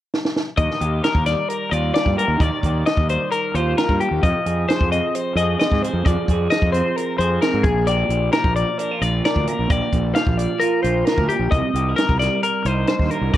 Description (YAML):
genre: math rock and midwest emo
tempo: 132 BPM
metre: 4/4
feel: straight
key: unclear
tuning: A4 = 439 Hz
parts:
  - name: compact cocktail drum kit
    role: drums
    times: 0.1-13.4 s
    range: hi-hat, kick drum, snare drum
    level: -21 LUFS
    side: right 1 dB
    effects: none
  - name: electric guitar through a small old amp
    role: accompaniment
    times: 0.6-13.4 s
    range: G2 to Bb4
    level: -25 LUFS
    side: right 6 dB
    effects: phaser
  - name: twelve-string electric guitar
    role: arpeggios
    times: 0.6-13.4 s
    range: G4 to F5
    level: -21 LUFS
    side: left 4 dB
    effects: spring reverb
  - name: fuzz fingered electric bass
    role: bass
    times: 0.6-13.4 s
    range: Bb1 to Ab2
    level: -22 LUFS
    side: equal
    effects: overdrive
room: light reverb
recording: worn, warbling old tape, cassette tape, warbly pitch drift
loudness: -17 LUFS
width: side -13 dB against mid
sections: 0.6-13.4 A section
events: drum fill 0.1-0.6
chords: 0.0 N.C.; 0.6 Ebmaj9; 4.2 Fm7; 7.6 Bb; 11.5 Cm7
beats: 0.12 | 0.57 1.03 1.49 1.94 | 2.40 2.85 3.31 3.77 | 4.22 4.68 5.13 5.59 | 6.04 6.50 6.96 7.41 | 7.87 8.32 8.78 9.23 | 9.69 10.14 10.60 11.05 | 11.51 11.96 12.42 12.87 | 13.33